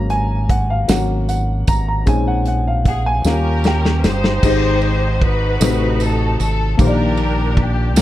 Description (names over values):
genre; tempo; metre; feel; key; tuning
slow gospel; 51 BPM (dotted quarters); 6/8; straight; Eb major from 4.4 s; A4 = 440 Hz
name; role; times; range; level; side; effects
warm baby grand piano; accompaniment; 0.0-8.0 s; Ab2 to Bb5; -20 LUFS; left 2 dB; none
fingered electric bass; bass; 0.0-8.0 s; G1 to Eb2; -18 LUFS; equal; none
warm soul drum kit; drums; 0.1-8.0 s; crash cymbal, hi-hat, kick drum, ride cymbal, snare drum; -18 LUFS; equal; none
tambourine; percussion; 0.9-8.0 s; none; -31 LUFS; right 12 dB; none
rich studio string section; melody; 2.9-8.0 s; Db4 to C5; -22 LUFS; equal; none
room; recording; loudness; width
studio ambience; dark, warm production; -14 LUFS; side -14 dB against mid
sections
0.0-4.4 A section; 4.4-8.0 B section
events
grand piano solo 0.0-4.4; drum fill 3.2-4.4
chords
0.0 Ab9sus4; 2.1 Bbm11; 3.2 Eb7; 4.4 Abmaj7; 5.6 Adim7; 6.8 Ebmaj7/Bb